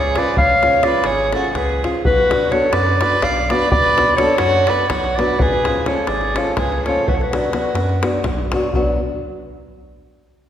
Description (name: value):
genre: balkan folk, Balkan wedding band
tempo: 251 BPM (eighths)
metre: 7/8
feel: straight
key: B dorian sharp4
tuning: A4 = 440 Hz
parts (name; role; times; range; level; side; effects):
- warm clarinet; melody; 0.0-8.2 s; A4 to E#5; -18 LUFS; left 1 dB; none
- warm violin; second line; 0.0-8.3 s; F#4 to D5; -22 LUFS; right 3 dB; none
- rubbery square bass; bass; 0.0-9.0 s; G#1 to F#2; -24 LUFS; equal; none
- davul; percussion; 0.0-9.0 s; none; -23 LUFS; left 1 dB; none
- nylon-string guitar; accompaniment; 0.2-9.0 s; E#3 to F#4; -23 LUFS; left 1 dB; none
room: wet concert hall reverb, RT60 1.9 s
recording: recorded in a church or concert hall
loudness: -14 LUFS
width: side -10 dB against mid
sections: 0.0-8.8 A section; 8.8-10.4 B section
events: none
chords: 0.0 C#; 2.1 Bm; 5.4 C#; 7.1 Bm